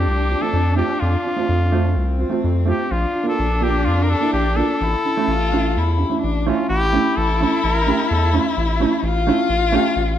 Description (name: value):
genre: klezmer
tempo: 127 BPM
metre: 4/4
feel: straight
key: unclear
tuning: A4 = 440 Hz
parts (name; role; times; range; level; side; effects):
- clear cornet; melody; 0.0-8.9 s; E4 to Bb4; -23 LUFS; left 1 dB; none
- dark violin; second line; 0.0-10.2 s; C4 to F4; -23 LUFS; left 4 dB; none
- round analog bass; bass; 0.0-10.2 s; A1 to F2; -20 LUFS; equal; none
- dark upright piano; accompaniment; 0.3-9.9 s; A3 to G4; -22 LUFS; right 4 dB; none
room: moderate recital hall reverb, RT60 1.3 s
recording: dark, warm production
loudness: -16 LUFS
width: side -10 dB against mid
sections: 0.0-6.7 A section; 6.7-10.2 B section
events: none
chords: 0.0 F; 2.9 Bb; 4.8 A